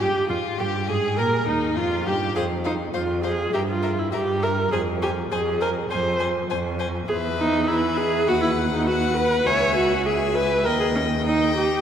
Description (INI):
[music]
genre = quick classical-period movement for string quartet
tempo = 101 BPM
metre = 4/4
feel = rubato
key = unclear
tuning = A4 = 440 Hz
[part]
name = rich violin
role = melody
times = 0.0-11.8 s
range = Eb4 to G#5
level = -30 LUFS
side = left 7 dB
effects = none
[part]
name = warm violin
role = second line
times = 0.0-11.8 s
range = Eb4 to E5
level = -30 LUFS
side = left 3 dB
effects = none
[part]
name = dark viola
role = accompaniment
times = 0.0-11.8 s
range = C#4 to C#5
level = -22 LUFS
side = right 1 dB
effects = none
[part]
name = rich cello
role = bass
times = 0.0-11.8 s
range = C#2 to Bb2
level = -26 LUFS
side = right 2 dB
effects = none
[sound]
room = wet church reverb, RT60 3.8 s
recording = recorded in a church or concert hall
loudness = -20 LUFS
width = side -8 dB against mid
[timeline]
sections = 0.0-11.8 A section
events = none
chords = 0.0 Eb; 2.4 F5; 3.5 Edim/G; 4.7 Fm; 7.1 E5; 8.3 B/D#; 9.5 C#m; 10.7 D#